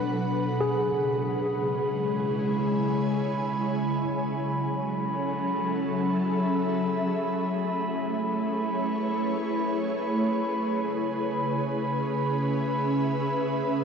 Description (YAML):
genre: ambient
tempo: free time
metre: none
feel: none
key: unclear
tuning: A4 = 440 Hz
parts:
  - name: ethereal airy pad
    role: sustained chords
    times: 0.0-13.8 s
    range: B2 to G#5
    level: -26 LUFS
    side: equal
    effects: ensemble chorus, built-in reverb
  - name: mellow tine electric piano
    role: arpeggios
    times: 0.0-4.0 s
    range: G#4 to A4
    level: -31 LUFS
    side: left 1 dB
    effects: overdrive, medium stereo tremolo, tape echo
  - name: glass harmonica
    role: texture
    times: 0.0-13.8 s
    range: B5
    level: -33 LUFS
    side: right 1 dB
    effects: none
room: wet huge ambient reverb, RT60 8.2 s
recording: in a vast, echoing space, cassette tape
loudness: -25 LUFS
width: side -6 dB against mid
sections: 0.0-4.0 A section; 4.0-13.8 B section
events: none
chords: 0.0 Bm; 0.6 C#m; 4.0 F#m9; 7.4 Amaj7; 10.8 C#m7